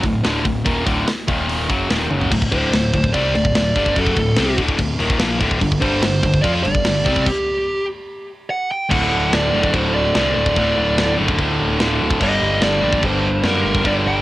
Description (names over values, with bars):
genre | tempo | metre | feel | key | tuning
heavy metal | 146 BPM | 4/4 | straight | D phrygian dominant | A4 = 440 Hz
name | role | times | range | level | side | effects
distorted electric guitar | riff | 0.0-14.2 s | D2 to F4 | -20 LUFS | left 3 dB | overdrive, cassette tape
tight distorted guitar | riff | 0.0-2.3, 5.6-14.2 s | D2 to F4 | -24 LUFS | right 5 dB | distortion, cassette tape
fuzz picked electric bass | bass | 0.0-14.2 s | D1 to F#2 | -23 LUFS | equal | overdrive
tight metal drum kit | drums | 0.0-13.9 s | china cymbal, crash cymbal, hi-hat, kick drum, snare drum, toms | -21 LUFS | equal | none
distorted electric guitar | riff | 2.3-14.2 s | D2 to F4 | -28 LUFS | right 2 dB | none
high-gain lead guitar | melody | 2.5-14.2 s | G4 to G5 | -21 LUFS | right 1 dB | distortion, cassette tape
room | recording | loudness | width
light reverb | home recording on cassette | -15 LUFS | side -16 dB against mid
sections
0.0-2.3 A section; 2.3-8.9 B section; 8.9-14.2 C section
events
drum fill 2.1; stop 7.3-8.9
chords
0.0 D5; 1.3 Eb5; 1.7 Ebm7; 2.3 D; 5.6 G5; 7.9 N.C.; 8.9 D5; 12.2 Gm